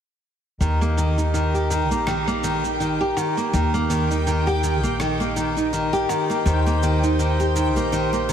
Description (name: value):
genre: folktronica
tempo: 82 BPM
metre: 4/4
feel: swing 56% on 16ths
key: Eb major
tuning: A4 = 440 Hz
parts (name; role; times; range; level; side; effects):
- pedal harmonium; sustained chords; 0.6-8.3 s; Eb3 to C5; -26 LUFS; right 1 dB; vintage 12-bit sampler grit
- nylon-string guitar; arpeggios; 0.6-8.3 s; Eb3 to G4; -22 LUFS; equal; low-pass filter, diffuse ambient delay
- upright bass; bass; 0.6-8.3 s; Bb1 to Eb2; -23 LUFS; equal; none
- electronic shaker, rim click and woodblock; drums; 0.6-8.3 s; none; -34 LUFS; right 1 dB; overdrive
- backwards swelling texture; texture; 0.6-8.3 s; G5; -34 LUFS; right 1 dB; built-in reverb, ensemble chorus
room: wet lush hall reverb, RT60 2.8 s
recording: dreamy mix soaked in reverb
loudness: -19 LUFS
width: side -8 dB against mid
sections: 0.6-8.3 A section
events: filter sweep on upright bass 0.6-8.3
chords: 0.6 Eb